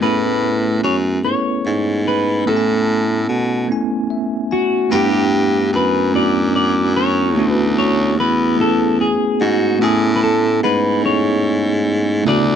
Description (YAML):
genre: slow six-eight R&B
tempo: 49 BPM (dotted quarters)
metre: 6/8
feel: straight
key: A major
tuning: A4 = 440 Hz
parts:
  - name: electric guitar at the edge of break-up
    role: melody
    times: 0.0-12.6 s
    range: F#4 to D5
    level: -20 LUFS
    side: left 1 dB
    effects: wide subtle chorus, slapback echo
  - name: bell-like tine electric piano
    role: accompaniment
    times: 0.0-12.6 s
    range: C#3 to G#5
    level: -19 LUFS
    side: right 1 dB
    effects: fast stereo tremolo
  - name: bright baritone saxophone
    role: bass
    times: 0.0-12.6 s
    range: D2 to B2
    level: -18 LUFS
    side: equal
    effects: none
room: little or no reverb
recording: dry, close 1970s-style studio recording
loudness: -14 LUFS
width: side -8 dB against mid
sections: 0.0-4.9 A section; 4.9-12.6 B section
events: tine electric piano fill 3.7-4.9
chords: 0.0 Amaj9; 4.9 Gmaj13; 7.4 Dmaj13; 9.8 Amaj9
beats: | 0.01 1.24 | 2.46 3.69 | 4.91 6.13 | 7.36 8.58 | 9.81 11.03 | 12.26